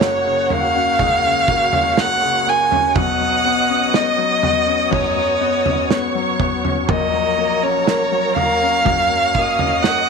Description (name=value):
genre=pop ballad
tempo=61 BPM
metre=4/4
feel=straight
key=F# major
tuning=A4 = 440 Hz
part: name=warm violin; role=melody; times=0.0-10.1 s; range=C#5 to G#5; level=-17 LUFS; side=right 1 dB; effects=none
part: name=warm studio violin section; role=second line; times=0.0-10.1 s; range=F#4 to D#6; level=-24 LUFS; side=equal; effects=none
part: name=clear concert grand piano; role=accompaniment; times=0.0-10.1 s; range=F#1 to C#4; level=-23 LUFS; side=left 14 dB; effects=none
part: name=percussive tonewheel organ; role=sustained chords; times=0.0-10.1 s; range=A#3 to C#5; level=-25 LUFS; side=right 2 dB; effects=overdrive, chorus vibrato, stopped rotary speaker
part: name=loose indie drum kit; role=drums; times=0.0-10.1 s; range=kick drum, snare drum, toms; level=-22 LUFS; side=right 5 dB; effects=none
room=small room reverb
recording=1960s-style stereo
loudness=-15 LUFS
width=side -5 dB against mid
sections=0.0-10.1 A section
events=none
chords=0.0 F#; 3.0 Bsus2; 6.9 F#/A#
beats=0.00 0.99 1.97 | 2.96 3.94 4.92 5.91 | 6.89 7.87 8.86 9.84